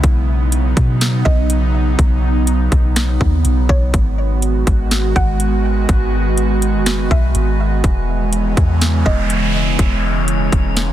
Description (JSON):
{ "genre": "hip hop, atmospheric cloud-rap", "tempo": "123 BPM", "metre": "4/4", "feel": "half-time", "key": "unclear", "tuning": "A4 = 440 Hz", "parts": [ { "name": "airy breathy pad", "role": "sustained chords", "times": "0.0-10.9 s", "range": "C#3 to F#4", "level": "-20 LUFS", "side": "right 2 dB", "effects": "chorus, sidechain pumping" }, { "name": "soft 808-style bass", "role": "bass", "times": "0.0-10.9 s", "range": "E1 to B2", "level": "-16 LUFS", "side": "equal", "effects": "none" }, { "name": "trap drum kit", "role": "drums", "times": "0.0-10.9 s", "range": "hi-hat, kick drum, snare drum", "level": "-16 LUFS", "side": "equal", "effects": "overdrive" }, { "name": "downlifter and noise sweep", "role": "sound effects", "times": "0.0, 8.2-10.9 s", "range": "none", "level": "-24 LUFS", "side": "right 1 dB", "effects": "none" }, { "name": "mallet-like synth pluck", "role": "melody", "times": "1.3-9.8 s", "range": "C#5 to F#5", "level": "-28 LUFS", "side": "right 1 dB", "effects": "chorus, tape echo" }, { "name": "drifting glass-harmonics texture", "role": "texture", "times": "4.5-10.9 s", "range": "G#3 to C#5", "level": "-27 LUFS", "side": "right 2 dB", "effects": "chorus, built-in reverb" } ], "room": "digital ambience", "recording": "dense, heavily limited modern master", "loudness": "-13 LUFS", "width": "side -12 dB against mid", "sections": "0.0-10.9 A section", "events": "noise sweep 8.2-10.9", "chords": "0.0 Badd9; 3.9 G#m7; 7.8 E6", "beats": "| 0.04 0.52 1.01 1.50 | 1.99 2.47 2.96 3.45 | 3.94 4.42 4.91 5.40 | 5.89 6.38 6.86 7.35 | 7.84 8.33 8.81 9.30 | 9.79 10.28 10.77" }